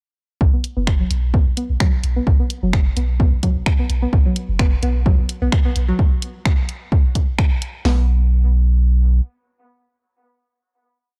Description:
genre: minimal techno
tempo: 129 BPM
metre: 4/4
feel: swing 54% on 16ths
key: unclear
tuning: A4 = 437 Hz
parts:
  - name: punchy sub bass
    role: bass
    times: 0.4-9.2 s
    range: F#1 to B1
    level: -20 LUFS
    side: equal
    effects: sidechain pumping
  - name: punchy analog drum machine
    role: drums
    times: 0.4-8.0 s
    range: hi-hat, kick drum, snare drum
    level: -18 LUFS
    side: equal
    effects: none
  - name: string-like resonator pluck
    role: riff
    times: 0.5-8.1 s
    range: F#3 to B3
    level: -28 LUFS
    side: equal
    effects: chorus, sidechain pumping, dub echo
  - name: garage drum kit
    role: drums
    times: 0.6-7.7 s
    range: finger snaps, hi-hat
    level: -29 LUFS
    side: equal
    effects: none
room: little or no reverb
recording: dark, warm production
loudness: -18 LUFS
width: mono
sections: 0.4-7.9 build; 7.9-11.2 final note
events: build-up 0.4-7.9; filter sweep on synth pluck 0.4-6.0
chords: 0.4 B5; 7.9 N.C.

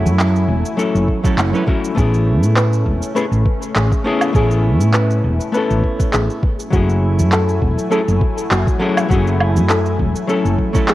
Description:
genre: sunset chillout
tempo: 101 BPM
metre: 4/4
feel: swing 55% on 16ths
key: unclear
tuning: A4 = 440 Hz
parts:
  - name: hollow-body jazz guitar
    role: accompaniment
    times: 0.0-10.9 s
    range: F#3 to B4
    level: -20 LUFS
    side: moving between left 4 dB and right 3 dB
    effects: auto-pan, ping-pong delay
  - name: lush unison pad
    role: sustained chords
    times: 0.0-10.9 s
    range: F#3 to G#5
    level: -25 LUFS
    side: equal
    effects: chorus, phaser
  - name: woody fretless electric bass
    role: bass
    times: 0.0-10.6 s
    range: E1 to A2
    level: -16 LUFS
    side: equal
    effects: none
  - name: electronic cabasa, handclaps and woodblock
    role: drums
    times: 0.1-10.9 s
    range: none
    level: -22 LUFS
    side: right 1 dB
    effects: none
  - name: electronic kick drum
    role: drums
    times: 1.1-10.9 s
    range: none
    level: -18 LUFS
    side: equal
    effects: none
  - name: soft round pluck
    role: arpeggios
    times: 2.0-10.9 s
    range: F#4 to B4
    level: -24 LUFS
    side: left 1 dB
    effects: chorus, ping-pong delay
room: light reverb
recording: worn, warbling old tape, cassette tape, warbly pitch drift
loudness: -14 LUFS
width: side -15 dB against mid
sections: 0.0-10.9 A section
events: none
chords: 0.0 F#m9; 2.0 Amaj9; 6.4 F#m9

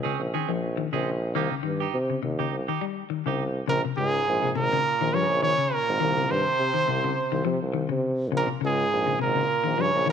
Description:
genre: afrobeat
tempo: 103 BPM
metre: 4/4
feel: swing 55% on 16ths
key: Bb dorian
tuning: A4 = 439 Hz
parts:
  - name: clean electric guitar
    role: stabs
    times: 0.0-3.4 s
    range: Bb3 to Ab4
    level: -32 LUFS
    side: right 11 dB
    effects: none
  - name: clear tuba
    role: bass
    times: 0.0-10.1 s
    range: Ab1 to C3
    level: -28 LUFS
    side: right 1 dB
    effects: none
  - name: clean electric guitar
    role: arpeggios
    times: 0.1-10.1 s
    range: C3 to G3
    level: -30 LUFS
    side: left 12 dB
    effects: spring reverb
  - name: clear trumpet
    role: melody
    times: 3.7-10.1 s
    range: Ab4 to Db5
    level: -24 LUFS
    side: right 2 dB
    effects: none
  - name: trombone with metal mute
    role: second line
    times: 3.7-10.1 s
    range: Ab2 to Db3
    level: -32 LUFS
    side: right 11 dB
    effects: none
room: moderate plate reverb, RT60 2.2 s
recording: 1960s-style stereo with parts hard left and right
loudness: -23 LUFS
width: side -7 dB against mid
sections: 0.0-3.7 A section; 3.7-10.1 B section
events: none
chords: 0.0 Bbm9; 1.3 Cm; 3.7 Bbm9; 6.0 Cm; 8.3 Bbm9

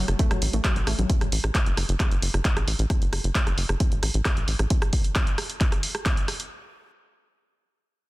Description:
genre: driving peak-time techno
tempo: 133 BPM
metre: 4/4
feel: straight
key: F# minor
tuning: A4 = 441 Hz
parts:
  - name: warbly dusty pluck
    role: riff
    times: 0.0-1.1 s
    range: F#3 to A3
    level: -32 LUFS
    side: left 1 dB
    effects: chorus, sidechain pumping, digital delay
  - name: tight sequencer bass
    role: bass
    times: 0.0-4.7 s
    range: F#1 to A1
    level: -25 LUFS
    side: equal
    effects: sidechain pumping
  - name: punchy analog drum machine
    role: drums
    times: 0.1-6.5 s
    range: handclaps, hi-hat, rim click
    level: -28 LUFS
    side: right 1 dB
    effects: sidechain pumping on hats, studio reverb
  - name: electronic kick drum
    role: drums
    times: 0.2-6.2 s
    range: none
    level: -24 LUFS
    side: equal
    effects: studio reverb
room: digital ambience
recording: dense, heavily limited modern master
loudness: -22 LUFS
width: side -19 dB against mid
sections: 0.0-6.5 A section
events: drop 0.0-6.5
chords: 0.0 F#m

